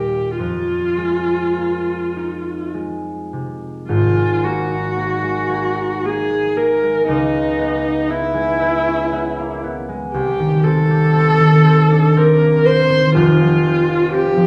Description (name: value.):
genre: classical, impressionist duo for viola and harp.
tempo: 51-63 BPM.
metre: 3/4.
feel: rubato.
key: F minor.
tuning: A4 = 440 Hz.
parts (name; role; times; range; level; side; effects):
warm viola; melody; 0.0-14.5 s; D#4 to C5; -19 LUFS; equal; none.
concert harp; accompaniment; 0.0-14.5 s; F1 to G4; -20 LUFS; equal; none.
room: wet recital hall reverb, RT60 1.4 s.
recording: heard from further back in the room.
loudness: -16 LUFS.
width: mono.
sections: 0.0-3.9 A section; 3.9-14.5 B section.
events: none.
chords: 0.4 Fm11; 3.9 G#sus2; 7.1 C#m9; 10.1 Cmadd9; 13.2 Fsus2.